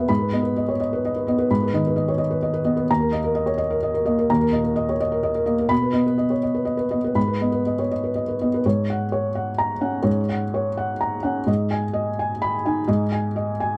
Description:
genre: neoclassical minimalist piano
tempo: 127 BPM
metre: 3/4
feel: rubato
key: G# minor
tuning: A4 = 440 Hz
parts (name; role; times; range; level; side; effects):
- felt-muted upright piano; solo; 0.0-13.8 s; D#2 to B5; -22 LUFS; equal; none
room: little or no reverb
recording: close, detailed microphones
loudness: -22 LUFS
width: mono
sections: 0.0-8.6 A section; 8.6-13.8 B section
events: none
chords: 0.1 G#m; 2.9 D#5; 5.7 B; 7.2 G#m; 8.6 F#/G#; 11.5 G#m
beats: | 0.10 0.56 1.03 | 1.50 1.96 2.42 | 2.89 3.36 3.83 | 4.29 4.76 5.24 | 5.71 6.19 6.67 | 7.16 7.65 8.15 | 8.64 9.12 9.59 | 10.06 10.54 11.01 | 11.48 11.95 12.41 | 12.88 13.35

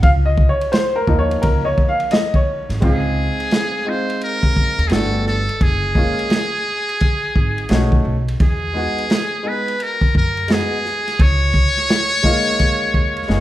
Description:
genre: hip hop, jazz-hop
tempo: 86 BPM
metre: 4/4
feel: swing 63% on 16ths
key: Db major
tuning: A4 = 440 Hz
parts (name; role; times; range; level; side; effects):
- warm upright piano; accompaniment; 0.0-13.4 s; F3 to F5; -21 LUFS; left 1 dB; none
- upright bass; bass; 0.0-13.4 s; Gb1 to F#2; -20 LUFS; equal; none
- crunchy breakbeat drum kit; drums; 0.0-13.4 s; hi-hat, kick drum, ride cymbal, snare drum; -18 LUFS; equal; none
- trumpet with metal mute; melody; 2.8-13.4 s; Ab4 to Db5; -20 LUFS; equal; none
room: light reverb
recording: none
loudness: -15 LUFS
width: side -14 dB against mid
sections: 0.0-2.8 A section; 2.8-13.4 B section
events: upright piano solo 0.0-2.8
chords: 0.0 Db69; 2.8 Dbmaj9; 4.9 Gmaj9; 5.6 Gbmaj9; 7.7 Cb9; 8.4 Emaj9; 11.2 Db69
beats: | 0.03 0.73 1.43 2.12 | 2.82 3.52 4.22 4.92 | 5.61 6.31 7.01 7.71 | 8.40 9.10 9.80 10.50 | 11.20 11.89 12.59 13.29

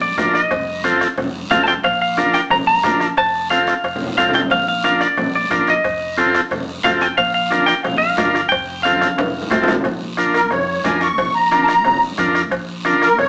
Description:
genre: latin, cumbia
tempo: 180 BPM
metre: 4/4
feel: straight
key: Bb major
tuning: A4 = 441 Hz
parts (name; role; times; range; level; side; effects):
- semi-hollow electric guitar; second line; 0.0-9.6 s; D5 to Bb5; -20 LUFS; equal; none
- fingered electric bass; bass; 0.0-13.3 s; F1 to F2; -32 LUFS; equal; none
- combo organ; accompaniment; 0.2-13.1 s; C4 to Bb4; -20 LUFS; equal; none
- bombo; percussion; 0.2-13.3 s; none; -31 LUFS; equal; none
- congas; percussion; 0.2-13.3 s; none; -29 LUFS; equal; none
- cowbell and timbales; percussion; 0.2-13.3 s; none; -28 LUFS; equal; none
- guiro; percussion; 0.2-13.3 s; none; -36 LUFS; equal; none
- musette accordion; melody; 10.3-13.3 s; Bb4 to Db6; -17 LUFS; equal; none
room: wet studio reverb, RT60 0.9 s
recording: band playing live in one room, small speaker sound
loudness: -17 LUFS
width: mono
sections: 0.0-9.8 A section; 9.8-13.3 B section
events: clean electric guitar solo 0.0-9.8; drum fill 3.5-4.5, 8.8-9.8; accordion solo 9.8-13.3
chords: 0.0 Bb; 0.5 F7; 1.8 Bb; 3.2 F; 4.5 Bb; 5.8 F7; 7.2 Bb; 8.5 F; 9.8 Bb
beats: 0.18 | 0.51 0.85 1.18 1.51 | 1.84 2.18 2.51 2.85 | 3.18 3.51 3.84 4.18 | 4.51 4.84 5.18 5.51 | 5.84 6.18 6.51 6.85 | 7.18 7.51 7.85 8.18 | 8.51 8.85 9.18 9.52 | 9.85 10.18 10.52 10.85 | 11.18 11.52 11.85 12.19 | 12.52 12.85 13.19

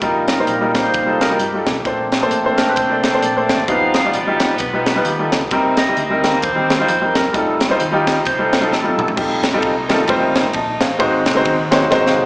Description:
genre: uptempo gospel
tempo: 131 BPM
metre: 4/4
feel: swing 59% on 8ths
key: unclear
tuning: A4 = 440 Hz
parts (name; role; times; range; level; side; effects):
- warm grand piano; accompaniment; 0.0-12.3 s; G2 to A5; -17 LUFS; equal; none
- bright tonewheel organ; sustained chords; 0.0-12.3 s; C3 to F5; -19 LUFS; right 1 dB; slow rotary speaker
- hollow-body short-scale fingered electric bass; bass; 0.0-12.3 s; F1 to G2; -30 LUFS; equal; none
- crisp fusion drum kit; drums; 0.0-12.2 s; crash cymbal, hi-hat, kick drum, ride cymbal, snare drum, toms; -19 LUFS; equal; none
- muted French horn section; sustained chords; 1.8-12.3 s; D3 to Eb4; -26 LUFS; equal; none
room: moderate club ambience, RT60 0.5 s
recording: live gig heard through the venue's PA, recital hall reverb, small speaker sound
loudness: -14 LUFS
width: side -25 dB against mid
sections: 0.0-9.2 A section; 9.2-12.3 B section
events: tonewheel organ solo 0.0-9.2; drum fill 8.7-9.2, 11.9-12.3; grand piano fill 11.5-12.3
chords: 0.0 F9sus4; 1.8 Bbmaj9; 3.7 G7b13; 5.5 Cm7; 7.3 F9; 11.0 Ab7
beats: | 0.01 0.47 0.93 1.39 | 1.85 2.31 2.77 3.23 | 3.68 4.14 4.60 5.06 | 5.51 5.97 6.43 6.89 | 7.35 7.80 8.26 8.72 | 9.18 9.63 10.09 10.55 | 11.01 11.46 11.92

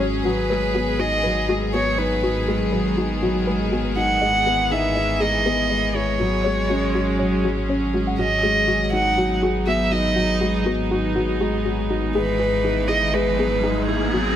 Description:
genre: electronica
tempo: 121 BPM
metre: 4/4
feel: straight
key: G# minor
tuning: A4 = 440 Hz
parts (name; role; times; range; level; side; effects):
- bright chamber string section; sustained chords; 0.0-14.4 s; D#3 to G#4; -27 LUFS; right 1 dB; none
- soft round pluck; arpeggios; 0.0-14.2 s; F#4 to F#5; -28 LUFS; left 2 dB; chorus, digital delay
- felt-muted upright piano; riff; 0.0-14.4 s; F#3 to B4; -24 LUFS; left 2 dB; digital delay
- dark detuned saw bass; bass; 0.0-14.4 s; G#1; -27 LUFS; right 1 dB; none
- dark violin; melody; 0.3-14.4 s; G#4 to F#5; -22 LUFS; right 1 dB; none
- riser; sound effects; 12.9-14.4 s; none; -28 LUFS; equal; none
room: moderate echo chamber reverb, RT60 2.2 s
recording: none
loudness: -18 LUFS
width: side -10 dB against mid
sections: 0.0-14.4 A section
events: riser 12.9-14.4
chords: 0.0 G#m7; 4.2 Emaj7/G#; 6.2 G#m7; 12.2 Emaj7/G#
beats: | 0.25 0.74 1.24 1.74 | 2.23 2.73 3.22 3.72 | 4.22 4.71 5.21 5.70 | 6.20 6.70 7.19 7.69 | 8.18 8.68 9.18 9.67 | 10.17 10.66 11.16 11.65 | 12.15 12.65 13.14 13.64 | 14.13

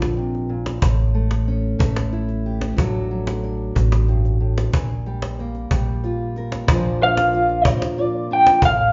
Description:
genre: acoustic folk duo or small band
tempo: 61 BPM (dotted quarters)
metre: 6/8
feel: straight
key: Bb major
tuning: A4 = 441 Hz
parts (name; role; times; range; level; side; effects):
- fingerpicked steel-string acoustic guitar; accompaniment; 0.0-8.9 s; G2 to Bb4; -28 LUFS; equal; none
- upright bass; bass; 0.0-8.9 s; A1 to Bb2; -25 LUFS; equal; none
- cajon; percussion; 0.0-8.8 s; none; -24 LUFS; equal; none
- electric guitar through a small old amp; melody; 7.0-8.9 s; C5 to G5; -18 LUFS; equal; tremolo
room: wet large studio reverb, RT60 0.9 s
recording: band playing live in one room, nothing above 7.5 kHz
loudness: -20 LUFS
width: mono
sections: 0.0-6.7 A section; 6.7-8.9 B section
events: clean electric guitar solo 6.7-8.9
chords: 0.0 Bb; 0.8 A7; 2.8 D/A; 4.7 Gm7/Bb; 6.7 Bb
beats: | 0.82 1.80 | 2.77 3.75 | 4.73 5.71 | 6.68 7.66 | 8.63

